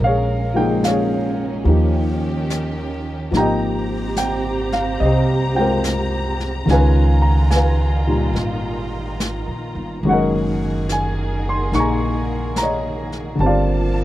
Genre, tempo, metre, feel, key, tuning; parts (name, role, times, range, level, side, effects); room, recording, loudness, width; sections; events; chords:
jazz ballad; 72 BPM; 4/4; swing 67% on 8ths; A4 = 441 Hz
warm baby grand piano; accompaniment; 0.0-14.0 s; Bb2 to Db6; -20 LUFS; left 1 dB
warm symphonic string section; sustained chords; 0.0-14.0 s; Eb3 to Bb5; -26 LUFS; right 2 dB
upright bass; bass; 0.0-14.0 s; Gb1 to Eb2; -20 LUFS; right 1 dB
jazz brush drum kit; drums; 0.0-14.0 s; brushed snare drum, hi-hat, snare drum; -28 LUFS; left 1 dB
little or no reverb; dry, close 1970s-style studio recording; -17 LUFS; side -14 dB against mid
0.0-14.0 A section
0.0 Bbm7; 1.7 Eb7; 3.3 Abmaj9; 6.7 Db13; 10.0 Gb69; 13.4 Gm9